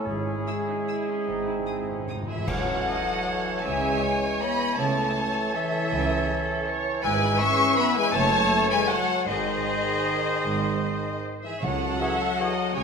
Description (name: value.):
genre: classical, orchestral ballroom waltz.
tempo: 141-173 BPM.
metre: 3/4.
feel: rubato.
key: C# minor.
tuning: A4 = 436 Hz.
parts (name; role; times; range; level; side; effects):
dark clarinet; second line; 0.0-12.5 s; D#4 to C#5; -35 LUFS; right 1 dB; none.
silver concert flute; second line; 0.0-12.8 s; E4 to C#6; -32 LUFS; left 1 dB; none.
warm bassoon; accompaniment; 0.0-12.5 s; D#3 to C#4; -34 LUFS; right 3 dB; none.
mellow French horn section; sustained chords; 0.0-12.8 s; D#3 to C#4; -31 LUFS; left 3 dB; none.
mellow trumpet section; stabs; 0.0-2.3 s; G#4; -32 LUFS; right 4 dB; none.
rich chamber cello section; bass; 0.1-12.8 s; F#2 to C#3; -34 LUFS; right 4 dB; none.
rich chamber double bass section; bass; 0.1-12.8 s; F#1 to C#2; -35 LUFS; right 4 dB; none.
cymbal swell, clash cymbals and concert bass drum; percussion; 0.1-3.2 s; none; -39 LUFS; equal; none.
timpani; percussion; 0.1-3.0, 11.6-12.2 s; G#2 to C#3; -36 LUFS; left 1 dB; none.
clear chamber violin section; melody; 0.5-12.8 s; G#4 to E6; -33 LUFS; left 4 dB; none.
rich chamber violin section; second line; 0.5-12.8 s; G#4 to C#6; -29 LUFS; left 3 dB; none.
rich chamber viola section; accompaniment; 0.5-12.8 s; B#3 to E5; -32 LUFS; right 2 dB; none.
clear oboe; second line; 2.5-12.5 s; B#4 to A5; -33 LUFS; right 2 dB; none.
room: wet scoring stage reverb, RT60 1.7 s.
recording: none.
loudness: -22 LUFS.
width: side -5 dB against mid.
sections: 0.0-2.5 A section; 2.5-12.8 B section.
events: timpani fill 1.3-2.5; band accent 2.5-2.9.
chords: 0.1 C#m/G#; 1.3 G#; 2.5 C#m; 4.8 A/C#; 7.0 E/G#; 8.1 F#m7; 9.3 G#; 11.6 C#m.